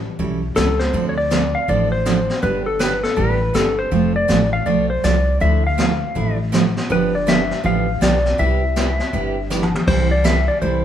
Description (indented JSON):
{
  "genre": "country, western swing",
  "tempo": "161 BPM",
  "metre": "4/4",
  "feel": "swing 63% on 8ths",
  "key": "C major",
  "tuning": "A4 = 440 Hz",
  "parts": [
    { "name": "upright bass", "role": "bass", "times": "0.0-10.8 s", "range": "F1 to D2", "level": "-21 LUFS", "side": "left 1 dB", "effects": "none" },
    { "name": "picked steel-string acoustic guitar", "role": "accompaniment", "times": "0.2-10.8 s", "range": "C3 to A4", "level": "-22 LUFS", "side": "right 5 dB", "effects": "none" },
    { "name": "jazz brush drum kit", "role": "drums", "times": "0.2-10.8 s", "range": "brushed snare drum, crash cymbal, hi-hat, kick drum, snare drum, toms", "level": "-23 LUFS", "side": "left 1 dB", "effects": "none" },
    { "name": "clean lap steel guitar", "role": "melody", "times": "0.6-10.8 s", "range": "A4 to F5", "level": "-20 LUFS", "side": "left 2 dB", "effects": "none" }
  ],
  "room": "moderate large studio reverb, RT60 1.3 s",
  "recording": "band playing live in one room",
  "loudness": "-16 LUFS",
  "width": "side -10 dB against mid",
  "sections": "0.0-10.8 A section",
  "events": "drum fill 9.5-9.9",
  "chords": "0.0 A7; 0.9 Dm7; 2.4 G; 3.9 F; 5.4 Dmadd9; 6.9 G7; 8.4 Cmaj7; 9.9 C6"
}